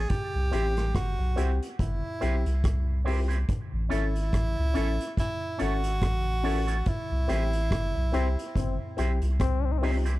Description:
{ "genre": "roots reggae", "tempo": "71 BPM", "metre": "4/4", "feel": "swing 57% on 16ths", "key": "unclear", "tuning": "A4 = 440 Hz", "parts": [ { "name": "edgy tenor saxophone", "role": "melody", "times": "0.0-9.4 s", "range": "E4 to G#4", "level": "-33 LUFS", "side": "right 2 dB", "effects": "dub echo" }, { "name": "soft dub sub bass", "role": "bass", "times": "0.0-10.2 s", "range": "G1 to C#2", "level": "-27 LUFS", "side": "equal", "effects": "none" }, { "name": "vintage drum kit", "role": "drums", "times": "0.1-10.2 s", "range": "hi-hat, kick drum, rim click", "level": "-32 LUFS", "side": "equal", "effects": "none" }, { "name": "electric guitar with an envelope filter", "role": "accompaniment", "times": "0.5-10.1 s", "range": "C4 to C#5", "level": "-39 LUFS", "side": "right 5 dB", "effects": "dub echo" }, { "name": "warm upright piano", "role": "stabs", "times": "0.5-10.0 s", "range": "C4 to A4", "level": "-32 LUFS", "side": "left 4 dB", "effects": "none" }, { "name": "clear trombone", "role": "second line", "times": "8.1-10.0 s", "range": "C4", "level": "-33 LUFS", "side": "left 8 dB", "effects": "dub echo" } ], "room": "small room ambience", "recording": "none", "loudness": "-25 LUFS", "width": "side -17 dB against mid", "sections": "0.0-10.2 A section", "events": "band accent 6.9-10.2", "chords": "0.1 C; 3.5 A; 6.9 C", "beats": "| 0.10 0.95 1.79 2.64 | 3.49 4.33 5.18 6.02 | 6.87 7.71 8.55 9.40" }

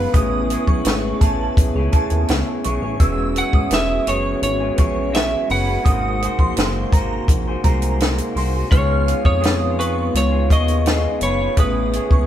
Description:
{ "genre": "indie pop, bedroom pop", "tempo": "84 BPM", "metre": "4/4", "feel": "straight", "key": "unclear", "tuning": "A4 = 439 Hz", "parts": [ { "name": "electric slide guitar", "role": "melody", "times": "0.0-12.3 s", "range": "B4 to F#5", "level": "-23 LUFS", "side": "right 1 dB", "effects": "none" }, { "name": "electric guitar through a small old amp", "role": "accompaniment", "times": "0.0-12.3 s", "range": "C#3 to C#5", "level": "-26 LUFS", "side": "left 2 dB", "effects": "warbly pitch drift" }, { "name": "mellow tonewheel organ", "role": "accompaniment", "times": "0.0-12.3 s", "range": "E3 to B#4", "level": "-28 LUFS", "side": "right 3 dB", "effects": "fast rotary speaker" }, { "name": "hollow soft pad", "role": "sustained chords", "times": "0.0-12.3 s", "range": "B#2 to G#4", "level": "-29 LUFS", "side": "left 1 dB", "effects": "chorus" }, { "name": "chorused synth bass", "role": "bass", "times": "0.0-12.2 s", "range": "E1 to E#2", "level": "-22 LUFS", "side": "equal", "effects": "none" }, { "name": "shimmering bell with halo", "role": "second line", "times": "0.1-12.3 s", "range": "A5 to E#6", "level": "-28 LUFS", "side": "right 4 dB", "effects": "ensemble chorus" }, { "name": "compact cocktail drum kit", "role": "drums", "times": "0.1-12.3 s", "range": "hi-hat, kick drum, snare drum", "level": "-17 LUFS", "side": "equal", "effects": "none" } ], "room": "moderate stone room reverb, RT60 1.0 s", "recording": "band playing live in one room", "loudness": "-16 LUFS", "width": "side -11 dB against mid", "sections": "0.0-12.3 A section", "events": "none", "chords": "0.1 Amaj9; 3.0 E69; 5.9 G#9; 8.7 C#7; 11.6 Amaj9", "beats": "| 0.14 0.85 1.57 2.28 | 3.00 3.71 4.42 5.14 | 5.85 6.57 7.28 7.99 | 8.71 9.42 10.14 10.85 | 11.56" }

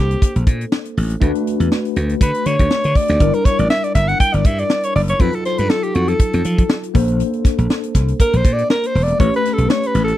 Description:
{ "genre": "polished 1980s jazz-funk pop", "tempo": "120 BPM", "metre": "4/4", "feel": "swing 54% on 16ths", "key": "unclear", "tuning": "A4 = 440 Hz", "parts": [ { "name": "breathy alto saxophone", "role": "melody", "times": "0.0-10.2 s", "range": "Gb4 to G5", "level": "-18 LUFS", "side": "equal", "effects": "slapback echo" }, { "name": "tine electric piano", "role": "accompaniment", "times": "0.0-10.2 s", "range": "Gb3 to C5", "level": "-22 LUFS", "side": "left 4 dB", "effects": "medium stereo tremolo, wide subtle chorus" }, { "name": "slap bass", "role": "bass", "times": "0.0-10.1 s", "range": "E1 to F3", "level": "-17 LUFS", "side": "equal", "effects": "none" }, { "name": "tight funk drum kit", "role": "drums", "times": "0.1-10.2 s", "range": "hi-hat, kick drum, snare drum", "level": "-16 LUFS", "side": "equal", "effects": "none" } ], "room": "little or no reverb", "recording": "dry, close 1970s-style studio recording", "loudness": "-14 LUFS", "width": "side -13 dB against mid", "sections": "0.0-10.2 A section", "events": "alto saxophone solo 0.0-10.2", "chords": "0.0 Bbmaj9; 1.2 D6; 3.2 Gm6; 5.2 F7b9; 7.0 Bbmaj9; 9.2 A9", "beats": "0.22 0.72 | 1.22 1.72 2.21 2.71 | 3.21 3.71 4.21 4.71 | 5.21 5.70 6.20 6.70 | 7.20 7.70 8.20 8.70 | 9.20 9.70" }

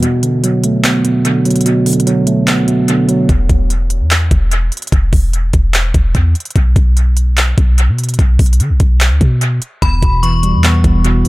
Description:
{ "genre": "hip hop, trap", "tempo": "147 BPM", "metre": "4/4", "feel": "half-time", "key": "unclear", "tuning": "A4 = 440 Hz", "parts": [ { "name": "mellow tine electric piano", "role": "accompaniment", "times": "0.0-3.3, 9.8-11.3 s", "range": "E2 to B3", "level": "-12 LUFS", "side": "right 1 dB", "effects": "dub echo" }, { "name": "trap drum kit", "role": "drums", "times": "0.0-11.3 s", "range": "handclaps, hi-hat, kick drum", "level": "-15 LUFS", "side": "equal", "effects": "dub echo" }, { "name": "clean 808-style bass", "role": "bass", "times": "3.3-11.2 s", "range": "E1 to D3", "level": "-12 LUFS", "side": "equal", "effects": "none" }, { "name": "metallic FM bell", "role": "second line", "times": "9.8-11.0 s", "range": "B5 to C#6", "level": "-19 LUFS", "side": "left 4 dB", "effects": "chorus, dub echo" } ], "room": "digital ambience", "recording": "echo-heavy mix", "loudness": "-10 LUFS", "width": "side -19 dB against mid", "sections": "0.0-11.3 A section", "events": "break 0.0-3.3", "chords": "0.0 Bm7; 3.3 N.C.; 9.8 Em", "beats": "| 0.03 0.43 0.84 1.25 | 1.66 2.07 2.48 2.88 | 3.29 3.70 4.11 4.51 | 4.92 5.33 5.74 6.15 | 6.56 6.96 7.37 7.78 | 8.19 8.60 9.01 9.41 | 9.82 10.23 10.64 11.05" }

